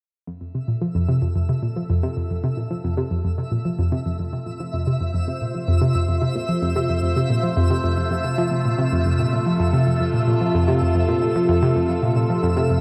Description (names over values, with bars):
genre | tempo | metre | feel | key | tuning
ambient, sequencer-driven space music | 111 BPM | 4/4 | straight | F major | A4 = 441 Hz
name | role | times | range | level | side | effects
phased analog pad | sustained chords | 0.8-12.8 s | C3 to C5 | -28 LUFS | equal | phaser, chorus
analog pluck | riff | 0.3-12.8 s | F2 to F3 | -22 LUFS | equal | chorus, tape echo
twinkling granular texture | texture | 1.1-12.8 s | E5 | -34 LUFS | equal | built-in reverb
room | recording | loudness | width
wet concert hall reverb, RT60 2.1 s | none | -21 LUFS | mono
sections
0.3-12.8 A section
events
fade-in on analog synth pad 0.3-12.8; fade-in on synth texture 0.3-12.8; filter sweep on synth arpeggio sound 0.3-12.8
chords
0.3 F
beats
| 0.28 0.82 1.36 1.90 | 2.44 2.98 3.52 4.06 | 4.60 5.14 5.68 6.22 | 6.76 7.30 7.84 8.38 | 8.93 9.46 10.01 10.55 | 11.09 11.63 12.17 12.71